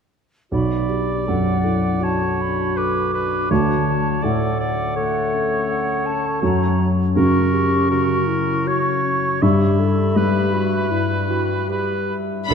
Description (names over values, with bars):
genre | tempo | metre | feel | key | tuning
cinematic | 80 BPM | 4/4 | rubato | B minor | A4 = 440 Hz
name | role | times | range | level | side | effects
clear oboe | second line | 0.5-12.2 s | A#4 to E5 | -26 LUFS | right 3 dB | none
mellow clarinet | second line | 0.5-12.2 s | E4 to A4 | -25 LUFS | equal | none
silver concert flute | second line | 0.5-12.2 s | F#5 to D6 | -26 LUFS | left 1 dB | none
warm grand piano | accompaniment | 0.5-12.5 s | B1 to G3 | -21 LUFS | right 1 dB | none
concert harp | arpeggios | 0.5-12.5 s | F#2 to B4 | -26 LUFS | left 7 dB | none
rich symphonic violin section | melody | 12.5 s | B5 | -20 LUFS | left 4 dB | none
clear symphonic viola section | accompaniment | 12.5 s | D4 to A4 | -20 LUFS | right 7 dB | none
rich symphonic cello section | bass | 12.5 s | B2 | -23 LUFS | right 6 dB | none
room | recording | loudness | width
wet concert hall reverb, RT60 2.5 s | none | -17 LUFS | side -6 dB against mid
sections
0.5-12.5 A section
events
none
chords
0.5 Bm7; 3.5 Dmaj7; 6.4 F#; 9.4 Emadd9/G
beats
| 0.52 1.27 2.01 2.76 | 3.50 4.23 4.96 5.69 | 6.42 7.15 7.91 8.67 | 9.43 10.17 10.92 11.70 | 12.51